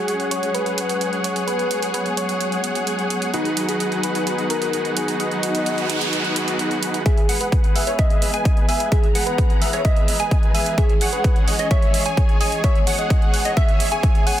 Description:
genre	EDM, festival progressive house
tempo	129 BPM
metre	4/4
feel	straight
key	unclear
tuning	A4 = 441 Hz
part	soft struck synth lead	melody	0.0-14.4 s	D#4 to F#5	-26 LUFS	left 1 dB	chorus, tape echo
part	rich studio string section	sustained chords	0.0-14.4 s	E3 to A#5	-28 LUFS	left 2 dB	sidechain pumping, low-pass filter
part	dense compressed supersaw	riff	0.0-14.4 s	D#4 to G#5	-25 LUFS	right 1 dB	sidechain pumping, low-pass filter, tape echo
part	electronic hi-hat	drums	0.1-14.4 s	none	-28 LUFS	right 4 dB	none
part	noise sweep	sound effects	5.6-7.1 s	none	-27 LUFS	right 2 dB	none
part	plucky unison lead	arpeggios	7.1-14.4 s	C#5 to G#5	-27 LUFS	equal	phaser, sidechain pumping, tape echo
part	electronic kick drum	drums	7.1-14.1 s	none	-17 LUFS	equal	overdrive
room	light reverb, digital ambience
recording	dense, heavily limited modern master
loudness	-17 LUFS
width	side -12 dB against mid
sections	0.0-7.1 A section; 7.1-14.4 B section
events	noise sweep 5.6-7.1; build-up 7.1-14.4; filter sweep on supersaw synth 7.1-14.4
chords	0.0 F#sus2; 3.3 G#m7; 7.1 E; 10.8 C#m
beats	0.08 0.55 1.01 | 1.48 1.94 2.41 2.87 | 3.34 3.80 4.27 4.73 | 5.20 5.66 6.13 6.59 | 7.06 7.52 7.99 8.45 | 8.92 9.38 9.85 10.31 | 10.78 11.24 11.71 12.17 | 12.64 13.10 13.57 14.03

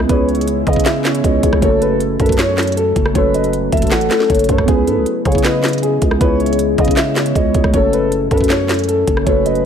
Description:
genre	hip hop, trap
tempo	157 BPM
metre	4/4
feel	half-time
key	C# minor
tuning	A4 = 442 Hz
part	dark grand piano	melody	0.0-9.6 s	G#4 to F#5	-20 LUFS	equal	none
part	muted felt-like synth keys	accompaniment	0.0-9.7 s	A3 to B4	-19 LUFS	left 2 dB	chorus, phaser
part	deep dark ambient pad	sustained chords	0.0-9.7 s	C#3 to E4	-23 LUFS	equal	chorus, built-in reverb
part	growling 808-style bass	bass	0.0-9.7 s	F#1 to C#3	-20 LUFS	equal	none
part	trap drum kit	drums	0.0-9.6 s	handclaps, hi-hat, kick drum, rim click, snare drum	-17 LUFS	equal	none
part	gliding portamento lead	second line	0.1-9.7 s	A4 to D#5	-23 LUFS	right 2 dB	chorus, phaser, digital delay
room	little or no reverb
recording	none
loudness	-12 LUFS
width	side -8 dB against mid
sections	0.0-9.7 A section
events	none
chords	0.0 C#m7; 1.6 F#m; 4.7 C#m7; 7.7 F#m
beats	| 0.09 0.48 0.86 1.24 | 1.62 2.00 2.39 2.77 | 3.15 3.53 3.92 4.30 | 4.68 5.06 5.45 5.83 | 6.21 6.59 6.97 7.36 | 7.74 8.12 8.50 8.88 | 9.27 9.65

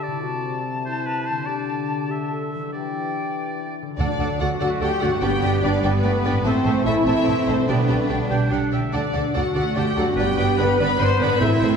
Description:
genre	cinematic, heroic adventure film score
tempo	97 BPM (dotted quarters)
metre	6/8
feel	straight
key	D mixolydian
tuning	A4 = 437 Hz
part	bright concert flute	second line	0.0-11.7 s	D5 to A5	-31 LUFS	left 2 dB	none
part	bright oboe	second line	0.0-11.7 s	B4 to G5	-33 LUFS	right 2 dB	none
part	dark clarinet	second line	0.0-11.8 s	B3 to C5	-31 LUFS	left 2 dB	none
part	warm French horn section	sustained chords	0.0-11.8 s	C3 to C5	-26 LUFS	left 1 dB	none
part	concert harp	arpeggios	0.0-11.8 s	G2 to D5	-30 LUFS	left 6 dB	none
part	rich symphonic violin section	melody	4.0-11.8 s	B4 to C6	-29 LUFS	left 4 dB	none
part	warm symphonic violin section	second line	4.0-11.7 s	C5 to G5	-35 LUFS	left 1 dB	none
part	clear symphonic viola section	accompaniment	4.0-11.7 s	A3 to B4	-30 LUFS	right 1 dB	none
part	bright trombone section	sustained chords	4.0-11.3 s	D3 to B3	-31 LUFS	right 2 dB	none
part	warm trumpet section	stabs	4.0-11.8 s	B3 to C5	-30 LUFS	right 2 dB	none
part	rich symphonic double bass section	bass	4.0-11.7 s	G1 to D2	-24 LUFS	right 3 dB	none
part	timpani	percussion	4.0-4.6, 11.4-11.8 s	A2 to D3	-27 LUFS	left 1 dB	none
part	rich symphonic cello section	bass	4.6-11.8 s	G3 to D4	-26 LUFS	right 3 dB	none
room	wet scoring stage reverb, RT60 1.8 s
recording	heard from further back in the room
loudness	-19 LUFS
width	side -6 dB against mid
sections	0.0-4.0 A section; 4.0-11.8 B section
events	build-up 0.0-4.0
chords	0.2 Cadd9; 1.5 Dsus4; 2.7 Em7; 4.0 D; 5.2 G; 6.4 Am; 7.7 G/B; 8.9 D; 10.2 G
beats	| 0.24 0.85 | 1.47 2.09 | 2.72 3.36 | 3.99 4.61 | 5.22 5.84 | 6.45 7.06 | 7.69 8.31 | 8.94 9.56 | 10.18 10.80 | 11.41

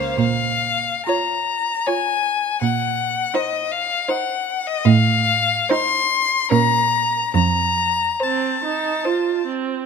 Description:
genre	classical, slow romantic movement for string quartet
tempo	65-82 BPM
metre	3/4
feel	rubato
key	Bb minor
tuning	A4 = 442 Hz
part	clear violin	melody	0.0-9.5 s	Eb5 to C6	-19 LUFS	left 6 dB	none
part	clear violin	second line	0.0-9.7 s	Bb4 to Db5	-27 LUFS	equal	none
part	clear viola	accompaniment	0.0-9.9 s	Bb3 to F4	-24 LUFS	right 7 dB	none
part	rich cello	bass	0.2-8.0 s	F2 to Bb2	-20 LUFS	right 6 dB	none
room	light reverb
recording	close, detailed microphones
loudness	-17 LUFS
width	side -6 dB against mid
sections	0.2-9.9 A section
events	none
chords	0.2 Bbm; 2.6 Cm7b5/Bb; 4.8 F7/A; 6.5 Bbm; 7.3 F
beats	| 0.18 1.07 1.86 | 2.61 3.34 4.07 | 4.84 5.70 6.50 | 7.34 8.21 9.05

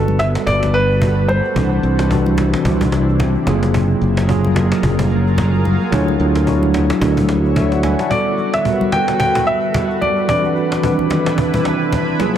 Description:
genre	amapiano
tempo	110 BPM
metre	4/4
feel	swing 58% on 16ths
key	G major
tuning	A4 = 440 Hz
part	warm grand piano	melody	0.0-2.1, 8.1-11.9 s	A4 to G5	-19 LUFS	equal	tape echo
part	tine electric piano	accompaniment	0.0-12.4 s	Eb3 to A5	-19 LUFS	equal	medium stereo tremolo
part	granular cloud pad	sustained chords	0.2-12.4 s	C3 to C#5	-22 LUFS	equal	built-in reverb
part	modern bright fingered electric bass	bass	0.0-7.9 s	F#1 to D2	-17 LUFS	equal	none
part	cajon	drums	0.1-12.4 s	none	-24 LUFS	equal	none
part	congas	percussion	0.1-12.3 s	none	-25 LUFS	left 1 dB	none
room	light reverb, studio reverb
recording	none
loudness	-14 LUFS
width	side -10 dB against mid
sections	0.0-12.4 A section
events	none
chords	0.0 Gmaj9; 1.6 Cadd9; 3.5 F#maj9; 5.9 Dmaj9; 8.1 Gmaj9; 10.3 Cmaj9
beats	0.47 1.02 | 1.56 2.11 2.65 3.20 | 3.74 4.29 4.83 5.38 | 5.92 6.47 7.02 7.56 | 8.11 8.65 9.20 9.74 | 10.29 10.83 11.38 11.93

